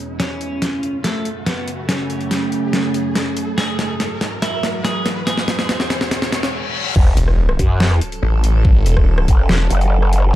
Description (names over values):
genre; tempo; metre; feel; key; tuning
heavy wobble dubstep; 142 BPM; 4/4; half-time; F# minor; A4 = 440 Hz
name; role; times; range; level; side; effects
twelve-string electric guitar; melody; 0.0-6.5 s; A3 to G#4; -24 LUFS; equal; tape echo
evolving wavetable pad; sustained chords; 0.0-10.4 s; E2 to A4; -26 LUFS; right 3 dB; chorus, built-in reverb, sidechain pumping
riser, reverse cymbal and sub drop; sound effects; 0.0-8.6 s; none; -26 LUFS; left 1 dB; none
dubstep drum kit; drums; 0.2-10.2 s; crash cymbal, hi-hat, rim click, snare drum; -21 LUFS; equal; overdrive
growl bass; bass; 7.0-10.3 s; F#1 to F#2; -15 LUFS; equal; chorus, overdrive
electronic kick drum; drums; 7.0-9.4 s; none; -14 LUFS; equal; overdrive
snarling distorted saw bass; bass; 7.2-9.7 s; E1 to A1; -15 LUFS; equal; overdrive
room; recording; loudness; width
light reverb; dark, warm production; -15 LUFS; side -14 dB against mid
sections
0.0-7.0 A section; 7.0-10.4 B section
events
build-up 0.0-7.0; riser 0.0-6.5; filter sweep on ambient pad 0.0-7.0; filter sweep on clean electric guitar 0.0-7.0; drum fill 0.2-6.5; reverse cymbal 6.1-7.0; stop 6.5-7.0; drop 7.0-10.4; impact 7.0-8.6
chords
0.2 F#m; 3.6 Eadd9; 5.3 E; 7.0 F#m